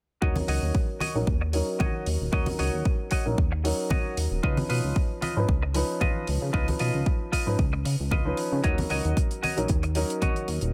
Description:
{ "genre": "nu-disco, nu disco", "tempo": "114 BPM", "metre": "4/4", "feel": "swing 54% on 16ths", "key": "Eb minor", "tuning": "A4 = 442 Hz", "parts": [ { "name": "warm baby grand piano", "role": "accompaniment", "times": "0.2-10.7 s", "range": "F3 to Cb5", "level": "-34 LUFS", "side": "equal", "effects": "sidechain pumping, low-pass filter" }, { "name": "semi-hollow electric guitar", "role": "riff", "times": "0.2-10.5 s", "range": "F4 to Eb5", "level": "-35 LUFS", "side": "equal", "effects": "subtle chorus, low-pass filter, tape echo" }, { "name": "chorused synth bass", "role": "bass", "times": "0.2-10.7 s", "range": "Eb1 to Db3", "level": "-30 LUFS", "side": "equal", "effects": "sidechain pumping" }, { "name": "electronic kick drum", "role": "drums", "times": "0.2-10.3 s", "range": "none", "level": "-28 LUFS", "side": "equal", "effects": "none" }, { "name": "hi-hat", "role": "drums", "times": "0.4-10.7 s", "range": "none", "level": "-40 LUFS", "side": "equal", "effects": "none" }, { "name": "congas", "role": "percussion", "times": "0.4-10.3 s", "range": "none", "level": "-37 LUFS", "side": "equal", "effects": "none" } ], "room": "small room ambience", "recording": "none", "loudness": "-26 LUFS", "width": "mono", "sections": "0.2-10.7 A section", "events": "filter sweep on grand piano 0.2-10.7", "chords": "0.2 Ebm7; 4.4 Db9; 8.6 Ebm7" }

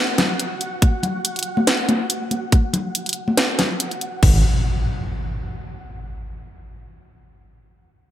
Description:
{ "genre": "deep dubstep", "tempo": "141 BPM", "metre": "4/4", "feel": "swing 53% on 16ths, half-time", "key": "unclear", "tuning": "A4 = 440 Hz", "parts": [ { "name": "flickering grainy texture", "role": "texture", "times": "0.0-4.2 s", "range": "F#4 to F#5", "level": "-30 LUFS", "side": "equal", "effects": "built-in reverb" }, { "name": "garage drum kit", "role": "drums", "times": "0.2-4.3 s", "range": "crash cymbal, hi-hat, snare drum", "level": "-20 LUFS", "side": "equal", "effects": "gated reverb" }, { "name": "congas", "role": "percussion", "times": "0.2-3.7 s", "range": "none", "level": "-24 LUFS", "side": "left 2 dB", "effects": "dub echo" }, { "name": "electronic kick drum", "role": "drums", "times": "0.8-4.3 s", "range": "none", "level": "-14 LUFS", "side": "equal", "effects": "none" }, { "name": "dark detuned saw bass", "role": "bass", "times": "4.2-4.4 s", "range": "G#1", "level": "-17 LUFS", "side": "equal", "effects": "tube saturation" }, { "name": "impact", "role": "sound effects", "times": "4.2-5.9 s", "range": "none", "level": "-23 LUFS", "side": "equal", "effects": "none" } ], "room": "moderate plate reverb, RT60 2.7 s", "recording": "bright 1980s-style digital production", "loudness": "-18 LUFS", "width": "side -12 dB against mid", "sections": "0.0-4.2 A section; 4.2-5.9 B section", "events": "none", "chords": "none" }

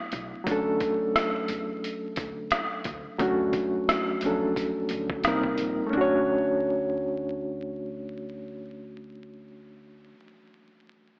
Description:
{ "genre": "lo-fi hip hop", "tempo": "88 BPM", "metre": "4/4", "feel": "swing 58% on 16ths", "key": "D major", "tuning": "A4 = 441 Hz", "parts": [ { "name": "reed electric piano", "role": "accompaniment", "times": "0.0-11.2 s", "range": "F3 to C#5", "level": "-26 LUFS", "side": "equal", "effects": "fast tremolo, low-pass filter" }, { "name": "upright bass", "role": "bass", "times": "0.1-10.1 s", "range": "Bb1 to E2", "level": "-41 LUFS", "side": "equal", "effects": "none" }, { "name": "trip hop sampler-style drum kit", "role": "drums", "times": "0.1-5.8 s", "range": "hi-hat, kick drum, rim click", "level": "-29 LUFS", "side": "equal", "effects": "none" } ], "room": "wet lush hall reverb, RT60 2.1 s", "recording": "dreamy mix soaked in reverb, vinyl crackle, AM radio sound", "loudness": "-25 LUFS", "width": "side -33 dB against mid", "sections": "0.0-5.9 A section; 5.9-8.7 B section", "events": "none", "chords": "0.5 Dmaj7; 5.2 Cm7; 5.9 Dmaj7" }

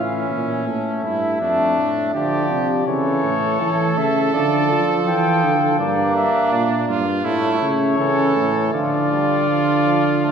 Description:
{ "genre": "classical, imitative canzona for brass ensemble", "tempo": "82 BPM", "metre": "4/4", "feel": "straight", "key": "D minor from 5.8 s", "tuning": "A4 = 440 Hz", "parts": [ { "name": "mellow cornet", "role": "melody", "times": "0.0-10.3 s", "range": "C#5 to G5", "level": "-23 LUFS", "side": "left 4 dB", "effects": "none" }, { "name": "clear trumpet", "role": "second line", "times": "0.0-10.3 s", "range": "C#4 to A4", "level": "-23 LUFS", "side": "right 3 dB", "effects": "none" }, { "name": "clear trombone", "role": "accompaniment", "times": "0.0-10.3 s", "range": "E3 to Bb3", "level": "-23 LUFS", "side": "right 1 dB", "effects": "none" }, { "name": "warm tuba", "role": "bass", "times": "0.0-10.3 s", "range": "F2 to F3", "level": "-21 LUFS", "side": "right 2 dB", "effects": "none" } ], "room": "wet concert hall reverb, RT60 1.9 s", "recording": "minimal, uncompressed stereo recording", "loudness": "-16 LUFS", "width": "side -7 dB against mid", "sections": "0.0-10.3 A section", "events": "none", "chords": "0.0 A; 1.4 Dm/F; 2.9 A; 4.3 Dm; 5.8 Gm; 7.3 A; 8.7 Dm" }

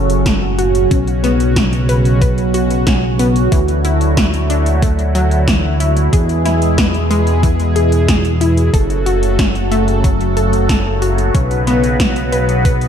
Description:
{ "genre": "synthwave", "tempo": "92 BPM", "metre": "4/4", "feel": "straight", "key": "unclear", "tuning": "A4 = 440 Hz", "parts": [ { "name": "phased analog pad", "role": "sustained chords", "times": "0.0-12.9 s", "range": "A2 to B4", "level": "-17 LUFS", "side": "right 1 dB", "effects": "phaser, chorus, sidechain pumping" }, { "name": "wide unison pluck", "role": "arpeggios", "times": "0.0-12.8 s", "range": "E3 to B4", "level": "-21 LUFS", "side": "left 3 dB", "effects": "ping-pong delay" }, { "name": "fat analog bass", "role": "bass", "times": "0.0-12.9 s", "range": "F#1 to E2", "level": "-16 LUFS", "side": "equal", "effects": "sidechain pumping" }, { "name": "80s electronic pad drums", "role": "drums", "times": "0.1-12.9 s", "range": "hi-hat, snare drum", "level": "-21 LUFS", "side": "equal", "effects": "overdrive" }, { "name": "electronic kick drum", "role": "drums", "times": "0.3-12.8 s", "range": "none", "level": "-15 LUFS", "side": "equal", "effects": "overdrive" } ], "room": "light reverb", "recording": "dark, warm production", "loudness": "-12 LUFS", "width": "side -8 dB against mid", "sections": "0.0-12.9 A section", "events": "none", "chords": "0.0 F#m; 0.9 Bsus2; 3.5 Dadd9; 6.1 E; 8.7 F#m; 11.3 Bsus2" }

